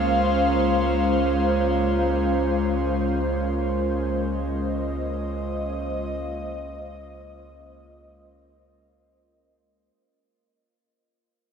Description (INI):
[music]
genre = ambient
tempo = free time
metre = none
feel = none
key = unclear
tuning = A4 = 440 Hz
[part]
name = airy breathy pad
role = sustained chords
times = 0.0-10.0 s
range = Ab3 to F5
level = -24 LUFS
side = right 1 dB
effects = chorus
[part]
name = warm sub bass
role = bass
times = 0.0-9.9 s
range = Db2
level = -29 LUFS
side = equal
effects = none
[part]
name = overtone-sweeping drone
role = drone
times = 0.0-10.0 s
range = Bb3 to F4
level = -29 LUFS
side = left 3 dB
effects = chorus, built-in reverb
[sound]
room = wet huge ambient reverb, RT60 8.6 s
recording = none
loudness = -22 LUFS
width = side -7 dB against mid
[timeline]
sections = 0.0-10.0 A section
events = fade-out 0.4-10.0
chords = 0.0 Dbmaj7